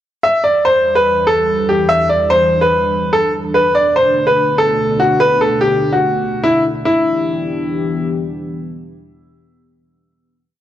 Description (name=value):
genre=hip hop, drill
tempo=145 BPM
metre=4/4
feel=half-time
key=E minor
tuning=A4 = 440 Hz
part: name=bright upright piano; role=melody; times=0.2-8.1 s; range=E4 to E5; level=-12 LUFS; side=equal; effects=none
part: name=dark analog pad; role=sustained chords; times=0.2-9.8 s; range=E2 to G4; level=-21 LUFS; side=right 1 dB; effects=chorus
room=light reverb, small room ambience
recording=dry, gritty hardware recording, cassette tape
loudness=-12 LUFS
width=side -11 dB against mid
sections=0.2-6.9 breakdown; 6.9-10.2 final chord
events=none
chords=0.2 Em7; 3.5 Bm7; 6.9 Em7